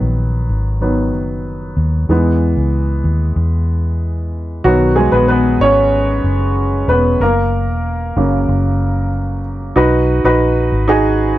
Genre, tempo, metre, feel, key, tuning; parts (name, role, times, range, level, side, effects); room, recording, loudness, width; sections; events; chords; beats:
piano-driven pop; 94 BPM; 4/4; straight; B major; A4 = 440 Hz
clear upright piano; accompaniment; 0.0-11.4 s; C#3 to C#5; -15 LUFS; right 1 dB
vintage muted fingered electric bass; bass; 0.0-11.4 s; E1 to E2; -16 LUFS; equal
little or no reverb; dry, close 1970s-style studio recording; -13 LUFS; side -15 dB against mid
0.0-9.8 A section; 9.8-11.4 B section
upright piano solo 0.0-9.8
0.0 B; 2.1 E; 4.6 B; 7.2 F#; 9.8 B
0.18 0.81 1.45 | 2.09 2.73 3.37 4.01 | 4.65 5.29 5.93 6.57 | 7.20 7.84 8.48 9.12 | 9.76 10.40 11.04